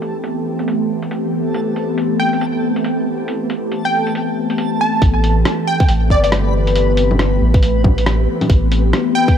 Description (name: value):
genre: future garage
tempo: 138 BPM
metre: 4/4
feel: swing 61% on 16ths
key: A minor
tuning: A4 = 440 Hz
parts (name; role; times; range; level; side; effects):
- ethereal airy pad; sustained chords; 0.0-9.4 s; E3 to G4; -19 LUFS; left 1 dB; ensemble chorus, built-in reverb, phaser, vintage 12-bit sampler grit, sidechain pumping
- lo-fi sampler-style drum kit; drums; 0.0-9.4 s; bongos, hi-hat, rim click; -23 LUFS; left 1 dB; low-pass filter on hats, low-pass filter on snare, low-pass filter on perc
- backwards swelling texture; texture; 0.0-9.4 s; A4 to B4; -25 LUFS; left 2 dB; built-in reverb
- plucky unison lead; melody; 2.2-6.3, 9.2-9.4 s; D5 to A5; -20 LUFS; right 2 dB; phaser, tape echo
- soft dub sub bass; bass; 5.0-8.9 s; G1 to A1; -16 LUFS; equal; sidechain pumping
- electronic kick drum; drums; 5.0-9.4 s; none; -13 LUFS; equal; none
room: light reverb, digital ambience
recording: cassette tape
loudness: -14 LUFS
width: side -8 dB against mid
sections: 0.0-5.0 A section; 5.0-9.4 B section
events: none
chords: 0.0 Am9